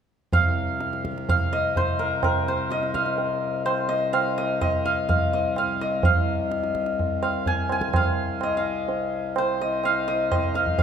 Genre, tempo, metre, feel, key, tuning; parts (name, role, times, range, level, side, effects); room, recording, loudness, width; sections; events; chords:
indian classical, Hindustani; 126 BPM; 3/4; straight; C raga malkauns; A4 = 440 Hz
santur; melody; 0.3-10.8 s; Bb4 to Ab5; -24 LUFS; left 1 dB
hand-pumped harmonium; drone; 0.3-10.8 s; C2 to C3; -32 LUFS; left 3 dB
tabla; percussion; 0.3-10.8 s; -26 LUFS; right 3 dB
moderate concert hall reverb, RT60 1.9 s; minimal, uncompressed stereo recording; -22 LUFS; side -7 dB against mid
0.3-10.8 A section